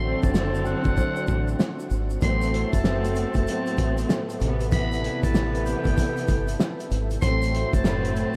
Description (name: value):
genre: hip hop, boom-bap hip-hop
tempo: 96 BPM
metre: 4/4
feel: swing 63% on 16ths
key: A dorian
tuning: A4 = 440 Hz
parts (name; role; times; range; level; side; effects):
- trumpet with metal mute; melody; 0.0-8.4 s; F#5 to C6; -35 LUFS; equal; tape echo
- warm studio string section; accompaniment; 0.0-8.4 s; A2 to B4; -31 LUFS; equal; cassette tape
- warm analog pad; sustained chords; 0.0-8.4 s; C3 to E5; -35 LUFS; equal; chorus
- warm horn section; stabs; 0.0-8.4 s; F#3 to C5; -37 LUFS; equal; tape echo
- deep dub fingered electric bass; bass; 0.0-8.2 s; F#1 to A1; -29 LUFS; equal; none
- cloth-damped thuddy drum kit; drums; 0.2-8.3 s; hi-hat, kick drum, snare drum; -28 LUFS; equal; none
- tube shaker; percussion; 0.2-8.3 s; none; -52 LUFS; equal; none
room: light reverb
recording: none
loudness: -24 LUFS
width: mono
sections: 0.0-8.4 A section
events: break 0.0-2.2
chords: 0.0 D9; 2.2 Am69; 4.4 Cmaj7/A; 7.2 Am69